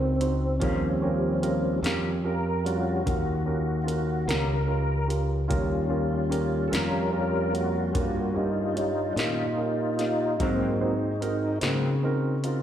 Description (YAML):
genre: slow blues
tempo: 49 BPM (dotted quarters)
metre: 12/8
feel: straight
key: Eb mixolydian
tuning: A4 = 440 Hz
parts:
  - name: warm upright piano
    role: accompaniment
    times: 0.0-12.6 s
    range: C4 to Db5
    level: -31 LUFS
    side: right 6 dB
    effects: slapback echo
  - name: tonewheel organ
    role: sustained chords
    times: 0.0-12.6 s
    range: F3 to Bb4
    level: -28 LUFS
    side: left 1 dB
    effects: slow rotary speaker, chorus vibrato
  - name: modern bright fingered electric bass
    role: bass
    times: 0.0-12.6 s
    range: Db2 to Db3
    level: -28 LUFS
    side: left 1 dB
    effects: none
  - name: electro analog drum machine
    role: drums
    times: 0.2-12.6 s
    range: hi-hat, kick drum, snare drum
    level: -31 LUFS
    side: left 1 dB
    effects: none
  - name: electric guitar through a small old amp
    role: accompaniment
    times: 0.6-11.9 s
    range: Ab2 to F4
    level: -34 LUFS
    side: left 5 dB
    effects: harmonic tremolo, slapback echo
room: moderate club reverb, RT60 0.8 s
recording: live gig heard through the venue's PA, recital hall reverb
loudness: -24 LUFS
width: side -10 dB against mid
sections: 0.0-12.6 A section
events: tonewheel organ solo 0.0-12.6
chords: 0.0 Ab9 (rootless); 0.6 Eb9; 10.4 Ab9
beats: | 0.62 1.84 3.07 4.29 | 5.51 6.73 7.95 9.17 | 10.39 11.62